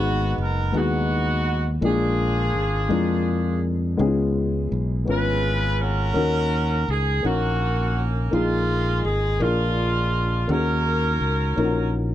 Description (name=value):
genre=slow gospel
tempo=55 BPM (dotted quarters)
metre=6/8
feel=straight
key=Eb minor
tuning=A4 = 437 Hz
part: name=clear horn section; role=melody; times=0.0-11.9 s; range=Ab3 to Cb5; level=-25 LUFS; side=right 2 dB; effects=none
part: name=dark upright piano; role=accompaniment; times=0.0-12.1 s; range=Ab2 to Cb5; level=-25 LUFS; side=left 3 dB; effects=none
part: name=fingered electric bass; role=bass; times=0.0-12.1 s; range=Gb1 to F2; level=-23 LUFS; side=equal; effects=none
room=little or no reverb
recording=dry, close 1970s-style studio recording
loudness=-20 LUFS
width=side -12 dB against mid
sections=0.0-12.1 A section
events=none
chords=0.0 Abm7; 1.8 Bb7; 4.0 Db7; 6.2 Ebm7; 8.3 Bb7sus4; 9.4 Bb7; 10.5 Ebm7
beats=0.74 | 1.82 2.90 | 3.98 5.07 | 6.15 7.24 | 8.32 9.40 | 10.49 11.57